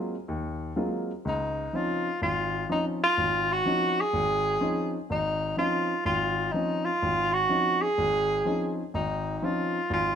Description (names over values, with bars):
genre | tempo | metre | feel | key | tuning
jazz | 125 BPM | 4/4 | swing 67% on 8ths | Db major | A4 = 440 Hz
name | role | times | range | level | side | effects
warm baby grand piano | accompaniment | 0.0-10.2 s | Ab1 to F4 | -30 LUFS | left 1 dB | none
warm tenor saxophone | melody | 1.3-10.2 s | Eb4 to Ab4 | -26 LUFS | right 1 dB | none
room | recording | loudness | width
light reverb | close, detailed microphones | -25 LUFS | side -8 dB against mid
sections
0.0-1.2 A section; 1.2-10.2 B section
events
none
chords
0.0 Ab13; 1.2 Dbmaj9